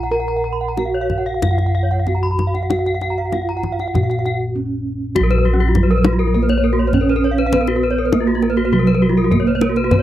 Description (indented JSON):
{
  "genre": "Balinese gamelan",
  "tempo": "90-101 BPM",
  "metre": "4/4",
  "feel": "straight",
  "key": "Bb pelog",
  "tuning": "A4 = 438 Hz",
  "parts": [
    { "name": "gamelan-type bronze metallophone", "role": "melody", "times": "0.0-10.0 s", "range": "Gb3 to Bb4", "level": "-19 LUFS", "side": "right 3 dB", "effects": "slapback echo" },
    { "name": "gamelan-type bronze metallophone", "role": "arpeggios", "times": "0.0-10.0 s", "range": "F4 to Cb6+35c", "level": "-23 LUFS", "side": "left 6 dB", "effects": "none" },
    { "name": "gamelan-type bronze metallophone", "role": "arpeggios", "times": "0.0-10.0 s", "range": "Db4 to Cb6+35c", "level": "-24 LUFS", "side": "right 5 dB", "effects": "none" },
    { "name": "gamelan-type bossed gongs", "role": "bass", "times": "0.0-10.0 s", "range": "Bb1 to Cb5+35c", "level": "-20 LUFS", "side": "equal", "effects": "none" },
    { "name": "kendang", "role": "percussion", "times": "0.8-10.0 s", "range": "none", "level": "-21 LUFS", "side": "left 2 dB", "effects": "none" }
  ],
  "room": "little or no reverb",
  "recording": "dry, close 1970s-style studio recording",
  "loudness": "-15 LUFS",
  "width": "side -12 dB against mid",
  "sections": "0.0-5.2 A section; 5.2-10.0 B section",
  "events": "break 4.3-5.2; drum fill 4.4-5.2",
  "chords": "none",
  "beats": "| 0.12 0.78 1.43 2.07 | 2.71 3.33 3.95 4.55 | 5.15 5.75 6.34 6.94 | 7.54 8.13 8.72 9.32 | 9.91"
}